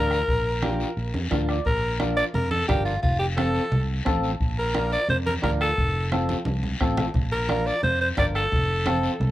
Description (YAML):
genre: latin, cumbia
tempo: 175 BPM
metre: 4/4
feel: straight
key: Bb major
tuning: A4 = 440 Hz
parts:
  - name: raspy alto saxophone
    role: melody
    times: 0.0-9.3 s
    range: F4 to D5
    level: -25 LUFS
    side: equal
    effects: none
  - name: electric guitar at the edge of break-up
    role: accompaniment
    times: 0.0-9.1 s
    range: C4 to F5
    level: -29 LUFS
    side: equal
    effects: wide subtle chorus
  - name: fingered electric bass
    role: bass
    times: 0.0-9.3 s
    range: F1 to F2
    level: -27 LUFS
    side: equal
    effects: none
  - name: bombo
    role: percussion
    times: 0.1-9.0 s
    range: none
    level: -28 LUFS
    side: equal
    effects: none
  - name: guiro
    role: percussion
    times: 0.1-9.3 s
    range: none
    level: -38 LUFS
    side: left 5 dB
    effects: none
  - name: congas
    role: percussion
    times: 0.6-9.3 s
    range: none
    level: -31 LUFS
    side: right 1 dB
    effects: none
room: light reverb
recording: none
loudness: -21 LUFS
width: side -14 dB against mid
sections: 0.0-1.7 A section; 1.7-9.3 B section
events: clean electric guitar fill 1.1-1.7; drum fill 6.1-7.1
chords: 0.0 Bb; 3.0 F; 4.4 Bb; 5.8 F; 7.1 Bb; 8.5 F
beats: | 0.28 0.63 0.97 1.31 | 1.66 2.00 2.35 2.69 | 3.03 3.38 3.72 4.06 | 4.41 4.75 5.09 5.43 | 5.78 6.12 6.46 6.81 | 7.15 7.49 7.83 8.18 | 8.52 8.86 9.21